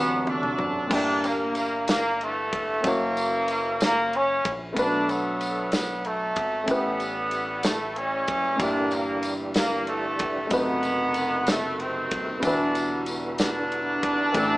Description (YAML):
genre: slow gospel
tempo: 63 BPM (dotted quarters)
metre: 6/8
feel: straight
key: unclear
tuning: A4 = 435 Hz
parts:
  - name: clear horn section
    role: melody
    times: 0.0-14.6 s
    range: C#3 to D4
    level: -25 LUFS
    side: equal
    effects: none
  - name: clear grand piano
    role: accompaniment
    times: 0.0-14.6 s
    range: G2 to D5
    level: -29 LUFS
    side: left 1 dB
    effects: none
  - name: tonewheel organ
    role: sustained chords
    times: 0.0-0.9, 8.6-14.6 s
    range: C3 to G5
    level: -33 LUFS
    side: right 1 dB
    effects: fast rotary speaker, overdrive, chorus vibrato
  - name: warm studio string section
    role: sustained chords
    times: 0.0-0.9 s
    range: Gb4 to C6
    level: -40 LUFS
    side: equal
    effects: none
  - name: deep dub fingered electric bass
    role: bass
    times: 0.0-14.6 s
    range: D#1 to D2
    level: -39 LUFS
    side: equal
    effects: none
  - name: modern studio drum kit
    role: drums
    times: 0.3-14.5 s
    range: crash cymbal, kick drum, ride cymbal, snare drum, toms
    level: -31 LUFS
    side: equal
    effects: none
  - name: tambourine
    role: percussion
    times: 0.9-14.6 s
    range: none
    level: -39 LUFS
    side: left 1 dB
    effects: none
room: moderate studio reverb, RT60 0.8 s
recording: band playing live in one room, small speaker sound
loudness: -23 LUFS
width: side -19 dB against mid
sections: 0.9-14.6 A section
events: drum fill 0.0-0.9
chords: 0.0 D7; 0.9 Gm6; 2.8 F#7; 4.8 Bm7; 6.7 A9; 8.6 Gm6; 10.5 B7b9/F#; 12.4 Em9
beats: | 0.91 1.87 | 2.84 3.80 | 4.76 5.72 | 6.68 7.64 | 8.60 9.56 | 10.52 11.47 | 12.43 13.39 | 14.35